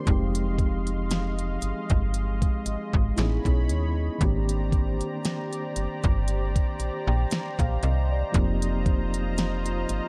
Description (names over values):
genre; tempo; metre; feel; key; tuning
contemporary R&B; 58 BPM; 4/4; swing 54% on 16ths; unclear; A4 = 440 Hz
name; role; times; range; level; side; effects
mellow tine electric piano; accompaniment; 0.0-10.1 s; Eb3 to G5; -34 LUFS; equal; none
warm analog pad; sustained chords; 0.0-10.1 s; Ab3 to C6; -36 LUFS; equal; chorus
slap-like FM bass; bass; 0.1-10.0 s; F1 to D#2; -29 LUFS; equal; none
smooth R&B drum kit; drums; 0.1-10.1 s; hi-hat, kick drum, snare drum; -28 LUFS; equal; none
room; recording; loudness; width
little or no reverb; dark, warm production, lossy compression artefacts; -26 LUFS; mono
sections
0.0-10.1 A section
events
none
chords
0.1 Fm7; 3.2 Amaj9#11; 4.2 Abmaj9#11; 8.3 F7sus4